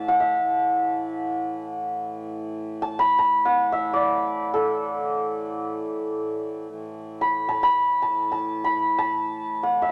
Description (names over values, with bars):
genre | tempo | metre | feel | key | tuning
indian classical, Hindustani | free time | none | none | A raga durga | A4 = 435 Hz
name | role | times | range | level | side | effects
santur | melody | 0.0-9.9 s | A4 to B5 | -24 LUFS | equal | none
hand-pumped harmonium | drone | 0.0-9.9 s | A2 to E3 | -36 LUFS | equal | none
room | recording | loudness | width
moderate large studio reverb, RT60 1.1 s | none | -24 LUFS | mono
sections
0.0-6.7 A section; 6.7-9.9 A section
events
none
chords
none